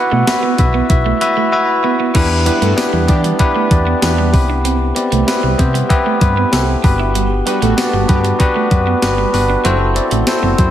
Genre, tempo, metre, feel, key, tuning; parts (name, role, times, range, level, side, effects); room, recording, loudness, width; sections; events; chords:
1980s-style pop; 96 BPM; 4/4; straight; E minor; A4 = 440 Hz
bell-like tine electric piano; accompaniment; 0.0-10.7 s; B3 to F#5; -15 LUFS; left 2 dB
electric guitar at the edge of break-up; riff; 0.1-10.6 s; E3 to E4; -22 LUFS; right 9 dB; wide subtle chorus, digital delay
solid FM bass; bass; 0.1-10.7 s; F#1 to E3; -17 LUFS; equal
clean 12-bit digital drum machine; drums; 0.3-10.7 s; crash cymbal, hi-hat, kick drum, snare drum, tambourine; -16 LUFS; equal; overdrive
analog synth brass; stabs; 2.5-3.2, 7.5-8.2 s; D3 to B4; -23 LUFS; right 4 dB; chorus
wet lush hall reverb, RT60 1.7 s, digital ambience; big arena sound; -12 LUFS; side -11 dB against mid
0.0-2.1 A section; 2.1-10.7 B section
0.0 Bsus4; 2.1 Em7; 4.3 Cmaj7; 6.8 Gmaj7; 9.6 F#m7b5